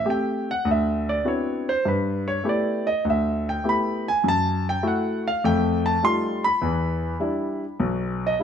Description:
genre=solo jazz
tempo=101 BPM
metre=4/4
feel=swing 69% on 8ths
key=unclear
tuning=A4 = 440 Hz
part: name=warm grand piano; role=solo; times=0.0-8.4 s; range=B1 to C6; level=-21 LUFS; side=equal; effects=none
room=moderate echo chamber reverb, RT60 1.7 s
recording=none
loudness=-21 LUFS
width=side -8 dB against mid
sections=0.0-8.4 A section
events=grand piano solo 0.0-8.4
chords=0.0 Am7; 0.7 D13; 1.8 G69; 4.2 F#m7; 5.4 F9; 6.6 Em7

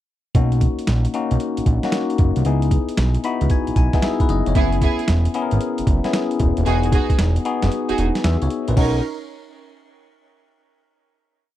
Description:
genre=R&B, new jack swing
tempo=114 BPM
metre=4/4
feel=swing 66% on 16ths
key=B major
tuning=A4 = 441 Hz
part: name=bell-like tine electric piano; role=accompaniment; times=0.3-9.0 s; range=A#3 to B5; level=-22 LUFS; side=left 5 dB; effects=phaser
part: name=boom bap sampler-style drum kit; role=drums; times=0.3-8.9 s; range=crash cymbal, hi-hat, kick drum, snare drum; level=-20 LUFS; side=right 1 dB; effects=none
part: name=fat analog bass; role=bass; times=0.4-9.0 s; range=D#1 to E2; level=-19 LUFS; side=right 1 dB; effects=none
part: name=rich studio string section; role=stabs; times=4.5-9.0 s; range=B3 to A#4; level=-26 LUFS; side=right 10 dB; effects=none
room=little or no reverb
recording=dry, close 1970s-style studio recording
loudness=-17 LUFS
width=side -13 dB against mid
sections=0.3-8.8 verse; 8.8-10.9 final chord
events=tine electric piano fill 3.0-4.6; break 7.7-8.8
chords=0.3 Bmaj9; 2.5 C#m9; 4.6 F#9sus4; 6.7 Emaj9; 8.8 Bmaj9

